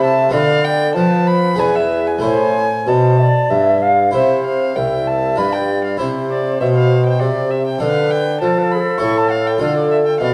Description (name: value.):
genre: classical, baroque-style sonata movement with continuo.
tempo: 92-102 BPM.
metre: 3/4.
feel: rubato.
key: A minor, C major from 4.1 s.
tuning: A4 = 445 Hz.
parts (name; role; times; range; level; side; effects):
warm violin; melody; 0.0-10.3 s; D5 to Db6; -24 LUFS; equal; none.
wooden flute; second line; 0.0-10.3 s; Ab4 to F5; -22 LUFS; equal; none.
harpsichord; accompaniment; 0.0-10.3 s; C2 to C5; -20 LUFS; equal; none.
clear bassoon; bass; 0.0-10.3 s; C2 to F3; -21 LUFS; equal; none.
room: wet recital hall reverb, RT60 1.3 s.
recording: dark, warm production.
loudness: -16 LUFS.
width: mono.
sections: 0.0-4.1 A section; 4.1-10.3 A section.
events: none.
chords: 0.3 Bdim/D; 1.6 E; 2.2 Am; 4.1 C; 5.4 G7; 6.0 C; 7.8 Dm; 9.0 A5; 9.6 Dm.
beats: | 0.34 0.96 1.59 | 2.23 2.87 3.51 | 4.14 4.76 5.38 | 6.00 6.61 7.21 | 7.82 8.42 9.02 | 9.61 10.21.